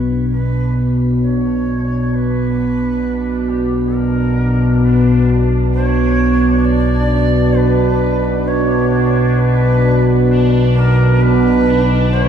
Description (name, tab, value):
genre	dark ambient drone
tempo	free time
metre	none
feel	none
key	B harmonic minor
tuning	A4 = 440 Hz
part	breathy bright shakuhachi	melody	0.0-12.3 s	G4 to D5	-23 LUFS	right 2 dB	shimmer reverb, ping-pong delay
part	analog drone	drone	0.0-12.3 s	B1 to B2	-13 LUFS	equal	chorus
part	bubbling stepped-filter texture	texture	0.0-12.3 s	D4	-24 LUFS	right 1 dB	chorus, built-in reverb, shimmer reverb
part	granular cloud pad	sustained chords	12.2-12.3 s	D3 to B3	-31 LUFS	left 1 dB	none
room	moderate plate reverb, RT60 3.6 s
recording	dreamy mix soaked in reverb, nothing above 10.6 kHz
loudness	-12 LUFS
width	side -8 dB against mid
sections	0.0-12.3 A section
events	fade-in on synth texture 0.0-12.3; fade-in on shakuhachi 0.0-12.3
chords	0.0 Bm